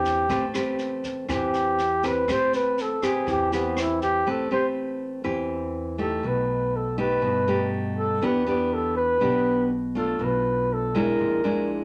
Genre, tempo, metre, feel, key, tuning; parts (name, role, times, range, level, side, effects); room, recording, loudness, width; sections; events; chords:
bossa nova; 121 BPM; 4/4; straight; A minor; A4 = 440 Hz
breathy flugelhorn; melody; 0.0-11.7 s; B3 to C5; -26 LUFS; equal
nylon-string guitar; accompaniment; 0.0-11.8 s; Bb2 to B4; -29 LUFS; equal
upright bass; bass; 0.0-11.8 s; A1 to G2; -36 LUFS; equal
jazz brush drum kit; drums; 0.0-4.1 s; kick drum, rim click, snare drum; -38 LUFS; equal
moderate studio reverb, RT60 0.5 s; -25 LUFS; mono
0.0-4.3 A section; 4.3-11.8 A section
flugelhorn solo 0.0-11.8
0.3 Am9; 6.2 Baug7; 8.2 Em7; 10.2 Bm7b5; 11.2 Bb7#11